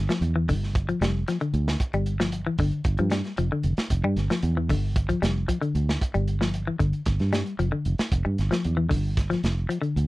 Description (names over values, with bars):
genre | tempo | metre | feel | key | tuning
afrobeat | 114 BPM | 4/4 | straight | unclear | A4 = 440 Hz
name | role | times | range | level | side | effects
semi-hollow electric guitar | arpeggios | 0.0-10.0 s | D3 to G3 | -27 LUFS | left 3 dB | none
fingered electric bass | bass | 0.0-10.1 s | F1 to G2 | -25 LUFS | right 1 dB | none
crunchy breakbeat drum kit | drums | 0.1-10.1 s | hi-hat, kick drum, snare drum | -28 LUFS | right 1 dB | none
room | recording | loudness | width
light reverb | dry, close 1970s-style studio recording | -23 LUFS | side -19 dB against mid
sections
0.0-10.1 A section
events
none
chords
0.0 G5